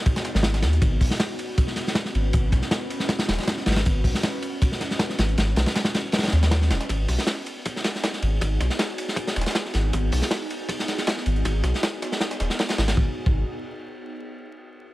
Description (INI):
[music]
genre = drum and bass, jungle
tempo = 158 BPM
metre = 4/4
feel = straight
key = G# minor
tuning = A4 = 440 Hz
[part]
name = ethereal airy pad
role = sustained chords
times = 0.0-13.1 s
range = B3 to B4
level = -32 LUFS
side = equal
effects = ensemble chorus, built-in reverb, vintage 12-bit sampler grit
[part]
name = crunchy breakbeat drum kit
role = drums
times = 0.1-13.3 s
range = hi-hat, kick drum, ride cymbal, snare drum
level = -24 LUFS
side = equal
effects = high-pass filter on kick, high-pass filter on cymbals, high-pass filter on hats, high-pass filter on snare, high-pass filter on room
[part]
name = dusty soul sampler-style drum kit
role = drums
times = 0.1-13.0 s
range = hi-hat, snare drum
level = -36 LUFS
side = right 1 dB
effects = high-pass filter on hats, high-pass filter on snare, high-pass filter on room
[part]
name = soft dub sub bass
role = bass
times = 0.3-13.4 s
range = D#1 to D#2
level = -22 LUFS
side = equal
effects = none
[sound]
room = small room ambience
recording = vinyl crackle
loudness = -21 LUFS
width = side -17 dB against mid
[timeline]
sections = 0.0-6.9 A section; 6.9-13.0 B section; 13.0-14.5 C section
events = drop 0.0-6.9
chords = 0.0 G#m7; 0.8 F#sus4; 6.9 G#m7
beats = 0.06 0.44 | 0.82 1.20 1.58 1.96 | 2.34 2.72 3.10 3.48 | 3.86 4.24 4.62 5.00 | 5.38 5.75 6.13 6.51 | 6.89 7.27 7.65 8.03 | 8.41 8.79 9.17 9.55 | 9.93 10.31 10.69 11.07 | 11.45 11.83 12.21 12.59 | 12.97 13.35